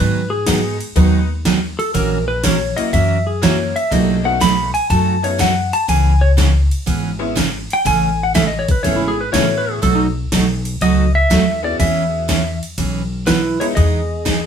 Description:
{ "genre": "country, western swing", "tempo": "122 BPM", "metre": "4/4", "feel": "swing 68% on 8ths", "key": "E major", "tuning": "A4 = 440 Hz", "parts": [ { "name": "clean lap steel guitar", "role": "melody", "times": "0.0-14.5 s", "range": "D#4 to B5", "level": "-19 LUFS", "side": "left 1 dB", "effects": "none" }, { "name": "picked steel-string acoustic guitar", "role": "accompaniment", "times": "0.0-14.4 s", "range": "B2 to A#4", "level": "-19 LUFS", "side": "right 5 dB", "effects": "none" }, { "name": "upright bass", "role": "bass", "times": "0.0-14.5 s", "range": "G#1 to G#2", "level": "-19 LUFS", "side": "left 1 dB", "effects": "none" }, { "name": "tack piano", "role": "accompaniment", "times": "0.5-13.8 s", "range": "F#3 to B4", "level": "-24 LUFS", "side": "left 4 dB", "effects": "none" }, { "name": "dubstep drum kit", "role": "drums", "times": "0.5-14.4 s", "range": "hi-hat, kick drum, ride cymbal, snare drum", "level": "-22 LUFS", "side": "left 1 dB", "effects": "overdrive" } ], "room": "wet studio reverb, RT60 0.6 s", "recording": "band playing live in one room", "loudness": "-14 LUFS", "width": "side -8 dB against mid", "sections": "0.0-13.8 A section", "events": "electric slide guitar solo 0.0-13.8", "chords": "0.0 G#m7; 1.9 F#7/A#; 3.9 B9; 5.9 C#m7; 7.9 Amaj9; 9.8 B7; 11.8 E69; 13.8 Emaj7", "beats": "0.47 0.96 1.45 | 1.95 2.44 2.93 3.42 | 3.92 4.41 4.90 5.39 | 5.89 6.38 6.87 7.36 | 7.86 8.35 8.84 9.33 | 9.82 10.32 10.81 11.30 | 11.79 12.29 12.78 13.27 | 13.76 14.26" }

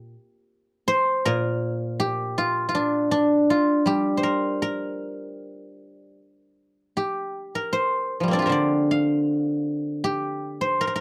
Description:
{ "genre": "chinese traditional, Chinese solo plucked strings", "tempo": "79 BPM", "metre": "4/4", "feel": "rubato", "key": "unclear", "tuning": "A4 = 440 Hz", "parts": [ { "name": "guzheng", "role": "solo", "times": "0.0-11.0 s", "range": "Bb2 to F5", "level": "-24 LUFS", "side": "equal", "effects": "none" } ], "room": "little or no reverb", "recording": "dry, close 1970s-style studio recording", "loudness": "-24 LUFS", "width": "mono", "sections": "0.0-11.0 A section", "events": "none", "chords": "none", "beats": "0.14 | 0.89 1.63 2.37 3.11 | 3.86 4.61 5.37 6.17 | 6.97 7.75 8.52 9.28 | 10.04 10.80" }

